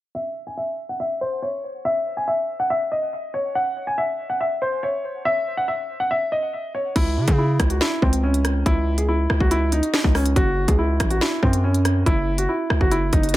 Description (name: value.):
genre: hip hop, drill.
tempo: 141 BPM.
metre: 4/4.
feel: half-time.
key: C# harmonic minor.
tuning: A4 = 441 Hz.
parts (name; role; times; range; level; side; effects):
dark grand piano; melody; 0.1-13.4 s; B#3 to G#5; -22 LUFS; equal; low-pass filter, tape echo.
distorted 808-style bass; bass; 7.0-13.4 s; F#1 to C#3; -21 LUFS; equal; distortion.
drill drum kit; drums; 7.0-13.4 s; crash cymbal, hi-hat, kick drum, rim click, snare drum; -21 LUFS; equal; none.
room: digital ambience.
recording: echo-heavy mix.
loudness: -19 LUFS.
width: side -15 dB against mid.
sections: 0.1-7.0 A section; 7.0-13.4 B section.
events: filter sweep on grand piano 0.1-7.0.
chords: 0.1 N.C.; 7.0 C#m; 10.4 F#5.